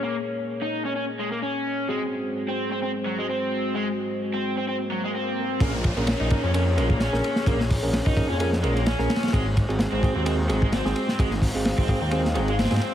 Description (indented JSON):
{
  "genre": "breakbeat, breaks",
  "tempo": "129 BPM",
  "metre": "4/4",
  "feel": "swing 54% on 16ths",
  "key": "Bb minor",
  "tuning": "A4 = 440 Hz",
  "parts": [
    { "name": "dark analog pad", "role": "sustained chords", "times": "0.0-12.9 s", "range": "Ab3 to F5", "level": "-31 LUFS", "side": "left 2 dB", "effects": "chorus, vintage 12-bit sampler grit, sidechain pumping" },
    { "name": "raw garage guitar", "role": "riff", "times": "0.0-12.9 s", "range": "Gb3 to Eb4", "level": "-29 LUFS", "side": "equal", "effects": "overdrive, tube saturation, low-pass filter, tape echo" },
    { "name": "bell-like tine electric piano", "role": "stabs", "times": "0.0-12.8 s", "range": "C4 to Bb4", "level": "-31 LUFS", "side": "right 3 dB", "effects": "low-pass filter, tape echo" },
    { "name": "swell and downlifter", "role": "sound effects", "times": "4.8-9.3 s", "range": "none", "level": "-36 LUFS", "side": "right 2 dB", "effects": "none" },
    { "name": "detuned saw bass", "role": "bass", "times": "5.6-12.8 s", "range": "Ab1 to Ab2", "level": "-25 LUFS", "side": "equal", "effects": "tube saturation" },
    { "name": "crunchy breakbeat drum kit", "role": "drums", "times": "5.6-12.9 s", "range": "hi-hat, kick drum, ride cymbal, snare drum", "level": "-25 LUFS", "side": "equal", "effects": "none" }
  ],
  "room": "light reverb, small room ambience",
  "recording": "heavily compressed radio sound",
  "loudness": "-22 LUFS",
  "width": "side -11 dB against mid",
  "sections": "0.0-5.6 A section; 5.6-12.9 B section",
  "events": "swell 4.8-5.6; drop 5.6-12.9",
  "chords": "0.0 Bbm7; 1.9 Ab7; 5.6 Bbm7; 9.3 Ab7"
}